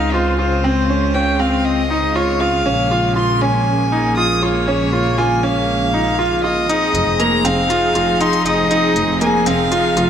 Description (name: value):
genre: piano and strings electronica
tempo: 119 BPM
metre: 4/4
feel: straight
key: F minor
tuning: A4 = 441 Hz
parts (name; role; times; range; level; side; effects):
- warm violin; melody; 0.0-10.1 s; C5 to Eb6; -19 LUFS; left 1 dB; digital delay
- rich chamber string section; sustained chords; 0.0-10.1 s; Db3 to Ab4; -21 LUFS; equal; none
- bright concert grand piano; riff; 0.0-10.1 s; Bb3 to F4; -18 LUFS; right 1 dB; digital delay
- bright studio double bass section; bass; 0.0-10.1 s; F1 to Db2; -22 LUFS; equal; none
- swell; sound effects; 5.9-6.7 s; none; -26 LUFS; right 3 dB; none
- electronic hi-hat; drums; 6.7-10.1 s; none; -25 LUFS; left 2 dB; none
room: moderate lush hall reverb, RT60 1.9 s, small room ambience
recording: none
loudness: -14 LUFS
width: side -8 dB against mid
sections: 0.0-6.7 A section; 6.7-10.1 B section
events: swell 5.9-6.7; build-up 6.7-10.1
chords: 0.0 Dbmaj7; 2.7 Bbm7; 6.7 Fm7